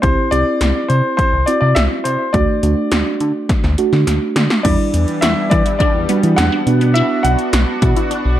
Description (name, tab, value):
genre	synth-pop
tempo	104 BPM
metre	4/4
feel	straight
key	unclear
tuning	A4 = 443 Hz
part	clear baby grand piano	melody	0.0-8.4 s	C5 to F#5	-19 LUFS	left 2 dB	analog delay
part	muted felt-like synth keys	accompaniment	0.0-7.7 s	G3 to G4	-19 LUFS	right 4 dB	chorus
part	chorused synth bass	bass	0.0-8.4 s	B1 to E3	-16 LUFS	equal	none
part	80s electronic pad drums	drums	0.0-8.2 s	crash cymbal, hi-hat, kick drum, snare drum	-18 LUFS	equal	overdrive
part	resonant blip pluck	arpeggios	4.6-8.3 s	B3 to F#4	-24 LUFS	left 1 dB	phaser, analog delay
part	lush unison pad	sustained chords	4.7-8.4 s	E3 to F#4	-22 LUFS	equal	chorus
room	light reverb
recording	dark, warm production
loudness	-13 LUFS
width	side -12 dB against mid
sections	0.0-4.6 A section; 4.6-8.4 B section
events	drum fill 3.5-4.6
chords	0.0 C; 2.3 D; 4.6 Em7; 6.7 Bm